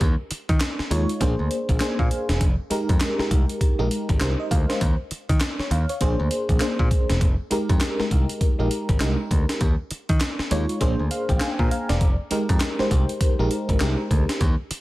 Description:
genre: R&B, new jack swing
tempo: 100 BPM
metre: 4/4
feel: swing 61% on 16ths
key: F minor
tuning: A4 = 442 Hz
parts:
  - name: FM electric piano with tremolo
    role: accompaniment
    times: 0.0-14.4 s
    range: Ab3 to Bb5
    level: -26 LUFS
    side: equal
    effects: phaser
  - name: modern bright picked electric bass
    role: bass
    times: 0.0-14.7 s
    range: E1 to Eb3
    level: -23 LUFS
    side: equal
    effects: none
  - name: breakbeat sampler-style drum kit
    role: drums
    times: 0.0-14.8 s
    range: handclaps, hi-hat, kick drum, snare drum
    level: -22 LUFS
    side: equal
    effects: none
room: little or no reverb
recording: none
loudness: -20 LUFS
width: side -18 dB against mid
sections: 0.0-14.8 A section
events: FM electric piano fill 1.5-2.4, 10.8-12.0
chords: 0.0 Eb9sus4; 1.2 Bb9; 2.4 Fm11; 4.8 Dbmaj9/Eb; 6.0 Bb9; 7.2 Fm11 (rootless); 9.6 Eb9sus4; 10.8 Bb9; 12.0 Fm11 (rootless)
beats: | 0.01 0.61 1.21 1.81 | 2.41 3.01 3.61 4.21 | 4.81 5.41 6.01 6.61 | 7.21 7.81 8.41 9.01 | 9.61 10.21 10.81 11.41 | 12.01 12.61 13.21 13.81 | 14.41

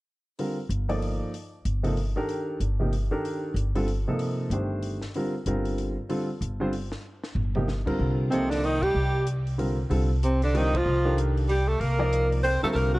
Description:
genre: modal jazz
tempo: 189 BPM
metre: 3/4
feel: swing 61% on 8ths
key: C dorian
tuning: A4 = 440 Hz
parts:
  - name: warm concert grand piano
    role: accompaniment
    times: 0.4-13.0 s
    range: C3 to D5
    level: -29 LUFS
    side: equal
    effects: none
  - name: compact cocktail drum kit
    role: drums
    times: 0.4-12.8 s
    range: crash cymbal, hi-hat, kick drum, ride cymbal, snare drum, toms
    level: -41 LUFS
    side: equal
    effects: vintage 12-bit sampler grit
  - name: upright bass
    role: bass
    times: 0.7-13.0 s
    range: G1 to C2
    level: -27 LUFS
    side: equal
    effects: none
  - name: growling alto saxophone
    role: melody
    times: 8.3-13.0 s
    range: C4 to C5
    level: -27 LUFS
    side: equal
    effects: none
  - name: bright tenor saxophone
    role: second line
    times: 8.3-13.0 s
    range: C3 to C4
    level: -31 LUFS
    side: right 2 dB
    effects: none
room: light reverb, studio reverb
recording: dark, warm production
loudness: -24 LUFS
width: side -20 dB against mid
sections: 0.4-8.0 A section; 8.0-13.0 B section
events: drum fill 7.0-7.7; band accent 8.8, 10.7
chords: 0.4 Cm9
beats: | 0.38 0.70 1.02 | 1.33 1.65 1.97 | 2.29 2.60 2.92 | 3.24 3.56 3.87 | 4.19 4.51 4.83 | 5.14 5.46 5.78 | 6.09 6.41 6.73 | 7.05 7.36 7.68 | 8.00 8.31 8.63 | 8.95 9.27 9.59 | 9.90 10.22 10.54 | 10.85 11.17 11.49 | 11.81 12.12 12.44 | 12.76

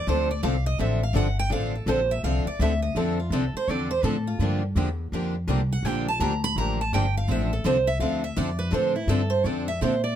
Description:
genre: acoustic string swing (jazz manouche)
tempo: 166 BPM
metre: 4/4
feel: swing 62% on 8ths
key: unclear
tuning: A4 = 438 Hz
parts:
  - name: picked steel-string acoustic guitar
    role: melody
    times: 0.0-10.2 s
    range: E4 to B5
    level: -27 LUFS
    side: right 3 dB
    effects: none
  - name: upright bass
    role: bass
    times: 0.0-10.2 s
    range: G1 to Bb2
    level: -26 LUFS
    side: equal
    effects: none
  - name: picked steel-string acoustic guitar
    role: accompaniment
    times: 0.1-9.9 s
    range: D3 to A4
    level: -30 LUFS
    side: left 8 dB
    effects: none
  - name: picked steel-string acoustic guitar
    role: accompaniment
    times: 0.1-9.9 s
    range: D3 to A4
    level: -31 LUFS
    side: right 9 dB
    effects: none
room: little or no reverb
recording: close, detailed microphones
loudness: -22 LUFS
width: side -10 dB against mid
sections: 0.0-10.2 A section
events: steel-string acoustic guitar solo 0.0-10.2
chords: 0.0 Gm9; 7.3 Dm7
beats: | 0.08 0.44 0.80 1.16 | 1.52 1.88 2.24 2.60 | 2.96 3.32 3.69 4.04 | 4.41 4.77 5.13 5.49 | 5.85 6.21 6.57 6.93 | 7.29 7.65 8.02 8.38 | 8.74 9.10 9.46 9.82

